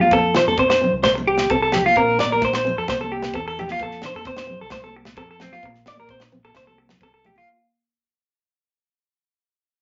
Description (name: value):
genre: highlife guitar band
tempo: 131 BPM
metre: 4/4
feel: straight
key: F major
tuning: A4 = 440 Hz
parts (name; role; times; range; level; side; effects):
- nylon-string guitar; accompaniment; 0.0-7.4 s; A3 to F4; -31 LUFS; equal; none
- clean electric guitar; arpeggios; 0.0-7.5 s; C4 to D5; -21 LUFS; equal; none
- fingered electric bass; bass; 0.0-7.4 s; Bb1 to F3; -34 LUFS; equal; none
- congas; percussion; 0.0-7.5 s; none; -31 LUFS; equal; none
- tight funk drum kit; drums; 0.1-7.1 s; kick drum, snare drum; -30 LUFS; equal; none
room: wet studio ambience, RT60 0.5 s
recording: nothing above 7.6 kHz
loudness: -19 LUFS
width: mono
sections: 0.0-7.5 A section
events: fade-out 0.0-7.5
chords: 0.1 F; 2.0 Bbmaj7; 2.9 C7(no3); 3.8 F; 5.6 Bb; 6.6 C7(no3)